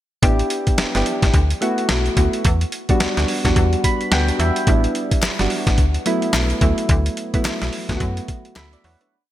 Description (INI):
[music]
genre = R&B, new jack swing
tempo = 108 BPM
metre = 4/4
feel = swing 60% on 16ths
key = unclear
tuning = A4 = 440 Hz
[part]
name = soft electric-piano-like synth keys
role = accompaniment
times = 0.2-9.3 s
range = F#3 to B5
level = -21 LUFS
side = right 1 dB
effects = chorus
[part]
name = slap-like FM bass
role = bass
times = 0.2-9.0 s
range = G1 to F#2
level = -20 LUFS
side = equal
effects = none
[part]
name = boom bap sampler-style drum kit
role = drums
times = 0.2-9.1 s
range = hi-hat, kick drum, snare drum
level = -20 LUFS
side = equal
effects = gated reverb
[part]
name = group handclap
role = percussion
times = 5.2-8.7 s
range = none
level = -32 LUFS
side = left 4 dB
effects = none
[sound]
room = light reverb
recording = bright 1980s-style digital production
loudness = -16 LUFS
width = side -13 dB against mid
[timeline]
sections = 0.2-9.1 verse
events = synth keys fill 3.6-4.7, 8.3-9.1; fade-out 6.9-9.1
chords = 0.2 A7sus4; 1.3 D6; 2.4 Em9; 4.7 A7sus4; 5.8 D6